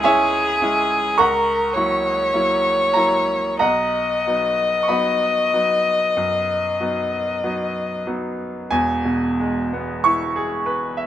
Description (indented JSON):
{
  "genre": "classical, romantic duo for violin and grand piano",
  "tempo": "42-57 BPM",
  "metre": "4/4",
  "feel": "rubato",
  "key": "E major",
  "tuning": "A4 = 440 Hz",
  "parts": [
    { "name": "rich violin", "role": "melody", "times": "0.0-8.0 s", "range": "G#4 to D#5", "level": "-19 LUFS", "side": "left 2 dB", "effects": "none" },
    { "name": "bright grand piano", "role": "accompaniment", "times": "0.0-11.1 s", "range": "E1 to C#6", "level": "-21 LUFS", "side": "right 1 dB", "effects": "none" }
  ],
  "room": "moderate small room reverb, RT60 0.5 s",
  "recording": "minimal, uncompressed stereo recording",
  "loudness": "-17 LUFS",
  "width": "side -11 dB against mid",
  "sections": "0.0-8.7 A section; 8.7-11.1 B section",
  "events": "none",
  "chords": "0.0 C#m; 1.2 F#7/C#; 3.6 B; 8.7 E",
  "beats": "0.04 1.19 2.33 | 3.60 4.90 6.17 7.43 | 8.70 10.06"
}